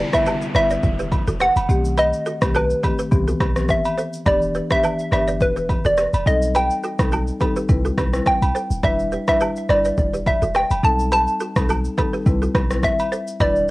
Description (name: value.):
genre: afrobeats.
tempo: 105 BPM.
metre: 4/4.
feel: swing 55% on 16ths.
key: E minor.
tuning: A4 = 440 Hz.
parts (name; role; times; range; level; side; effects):
hollow square pluck; melody; 0.0-13.7 s; B4 to A5; -20 LUFS; equal; chorus, tape echo.
marimba with medium hard mallets; accompaniment; 0.0-13.7 s; D3 to B4; -26 LUFS; left 2 dB; cassette tape.
balafon; riff; 0.0-13.5 s; F#4 to D5; -28 LUFS; right 2 dB; cassette tape, tape echo.
clean 808-style bass; bass; 0.0-13.7 s; D1 to C2; -22 LUFS; equal; none.
downlifter; sound effects; 0.0-4.3 s; none; -34 LUFS; equal; none.
deep house drum kit; drums; 0.1-13.7 s; kick drum, rim click, shaker; -23 LUFS; equal; cassette tape.
agogo bells and woodblock; percussion; 0.1-13.6 s; none; -28 LUFS; right 1 dB; none.
room: light reverb.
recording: home recording on cassette.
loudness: -17 LUFS.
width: side -20 dB against mid.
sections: 0.0-13.7 A section.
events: none.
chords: 0.0 Em7; 1.7 B7b9b13; 3.1 Cmaj7; 4.3 Em7; 6.3 B7b9b13; 7.7 Cmaj7; 8.8 Em7; 10.8 B7b9b13; 12.3 Cmaj7.